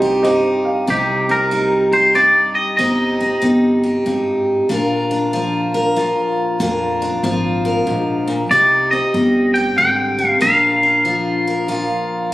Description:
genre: honky-tonk and classic country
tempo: 94 BPM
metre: 3/4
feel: swing 65% on 8ths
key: C minor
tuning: A4 = 441 Hz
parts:
  - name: dark upright piano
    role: accompaniment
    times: 0.0-0.9 s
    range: G4 to G5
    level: -17 LUFS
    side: right 2 dB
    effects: none
  - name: picked steel-string acoustic guitar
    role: accompaniment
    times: 0.0-12.3 s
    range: G2 to Bb4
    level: -18 LUFS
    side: equal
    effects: none
  - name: pedal steel guitar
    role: sustained chords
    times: 0.0-0.9 s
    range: G4 to Eb5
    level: -26 LUFS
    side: equal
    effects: none
  - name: upright bass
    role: bass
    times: 0.0-11.8 s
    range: G1 to F2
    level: -22 LUFS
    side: equal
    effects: none
  - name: twangy electric guitar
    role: melody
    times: 0.9-4.4, 8.5-12.1 s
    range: G4 to G5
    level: -14 LUFS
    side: equal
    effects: tape echo
room: moderate recital hall reverb, RT60 1.3 s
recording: recorded on a phone in the room, studio ambience, compression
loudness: -14 LUFS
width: side -16 dB against mid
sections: 0.9-12.3 A section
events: upright piano fill 0.0-0.9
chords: 0.0 Cm; 4.7 Bb; 8.5 Cm; 10.4 Bb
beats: 0.24 | 0.87 1.51 2.15 | 2.78 3.42 4.05 | 4.69 5.33 5.96 | 6.60 7.23 7.87 | 8.51 9.14 9.78 | 10.41 11.05 11.68 | 12.32

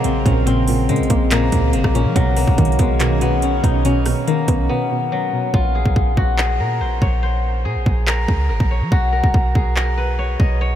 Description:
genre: hip hop, trap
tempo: 142 BPM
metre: 4/4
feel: half-time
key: Bb minor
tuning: A4 = 441 Hz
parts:
  - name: steel-string zither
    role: melody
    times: 0.0-10.8 s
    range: F3 to Eb5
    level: -21 LUFS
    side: left 2 dB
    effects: low-pass filter, analog delay
  - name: string-like resonator pluck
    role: accompaniment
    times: 0.0-5.5 s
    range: Bb2 to B3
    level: -22 LUFS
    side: equal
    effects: chorus, low-pass filter
  - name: glassy FM pad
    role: sustained chords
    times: 0.0-5.5 s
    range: Db3 to C#5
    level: -26 LUFS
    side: right 1 dB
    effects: ensemble chorus, built-in reverb
  - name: clean 808-style bass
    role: bass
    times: 0.0-10.8 s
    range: Ab1 to F3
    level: -19 LUFS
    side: equal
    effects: none
  - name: trap drum kit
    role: drums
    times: 0.0-10.5 s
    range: handclaps, hi-hat, kick drum, rim click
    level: -21 LUFS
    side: equal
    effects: overdrive
room: light reverb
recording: none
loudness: -15 LUFS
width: side -10 dB against mid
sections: 0.0-5.5 A section; 5.5-10.8 B section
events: break 4.7-5.5; hi-hats muted 5.5-10.8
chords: 0.0 Bbmadd9; 2.2 Badd9; 5.5 Bbmadd9; 8.9 Bsus2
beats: 0.05 | 0.47 0.89 1.31 1.74 | 2.16 2.58 3.00 3.43 | 3.85 4.27 4.69 5.12 | 5.54 5.96 6.38 6.81 | 7.23 7.65 8.07 8.50 | 8.92 9.34 9.76 10.19 | 10.61

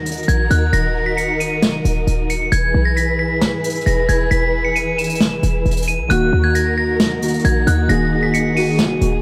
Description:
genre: hip hop, trap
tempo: 134 BPM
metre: 4/4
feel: half-time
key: Eb phrygian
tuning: A4 = 440 Hz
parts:
  - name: metallic FM bell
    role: melody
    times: 0.0-9.2 s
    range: Gb6 to E7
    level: -23 LUFS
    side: equal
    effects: chorus, low-pass filter
  - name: dark symphonic string section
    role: sustained chords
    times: 0.0-9.2 s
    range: Eb3 to B4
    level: -25 LUFS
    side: equal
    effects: none
  - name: short 808-style bass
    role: bass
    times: 0.0-9.2 s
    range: Eb1 to G#2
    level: -21 LUFS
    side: equal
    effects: none
  - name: jazz brush drum kit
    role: drums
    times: 0.1-9.1 s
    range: hi-hat, snare drum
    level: -23 LUFS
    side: equal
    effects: none
  - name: warbly lo-fi synth keys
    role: accompaniment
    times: 6.1-9.2 s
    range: Eb3 to Ab4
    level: -21 LUFS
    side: equal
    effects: chorus, low-pass filter
room: studio reverb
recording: none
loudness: -17 LUFS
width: mono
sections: 0.0-9.2 A section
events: none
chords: 0.0 Ebm; 2.5 E; 6.1 Ebm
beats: 0.28 | 0.73 1.18 1.62 2.07 | 2.52 2.97 3.42 3.86 | 4.31 4.76 5.21 5.65 | 6.10 6.55 7.00 7.45 | 7.89 8.34 8.79

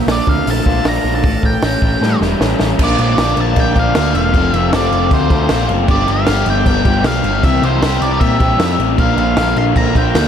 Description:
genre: indie rock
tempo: 155 BPM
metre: 4/4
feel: straight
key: unclear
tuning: A4 = 440 Hz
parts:
  - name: crunchy overdriven guitar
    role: riff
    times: 0.0-10.3 s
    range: F2 to G4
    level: -16 LUFS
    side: left 1 dB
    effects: none
  - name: octave-fuzz lead guitar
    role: melody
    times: 0.1-10.3 s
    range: C5 to C6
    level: -20 LUFS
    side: equal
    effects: distortion, diffuse ambient delay
  - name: growling picked electric bass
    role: bass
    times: 0.1-10.3 s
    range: E1 to Bb2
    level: -17 LUFS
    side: equal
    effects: overdrive
  - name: compact cocktail drum kit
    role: drums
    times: 0.1-10.2 s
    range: crash cymbal, hi-hat, kick drum, snare drum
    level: -17 LUFS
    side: equal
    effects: none
room: moderate huge ambient reverb, RT60 8.2 s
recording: dreamy mix soaked in reverb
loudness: -12 LUFS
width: side -8 dB against mid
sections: 0.0-2.8 A section; 2.8-10.3 B section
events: drum fill 2.0-2.8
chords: 0.0 Bbmaj7; 1.2 A7; 2.8 Bb; 4.3 F; 5.9 G7; 7.4 C; 9.0 Bb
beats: 0.08 0.47 0.86 | 1.25 1.64 2.02 2.41 | 2.80 3.19 3.57 3.96 | 4.34 4.73 5.12 5.50 | 5.89 6.28 6.66 7.05 | 7.44 7.83 8.21 8.60 | 8.99 9.38 9.76 10.15

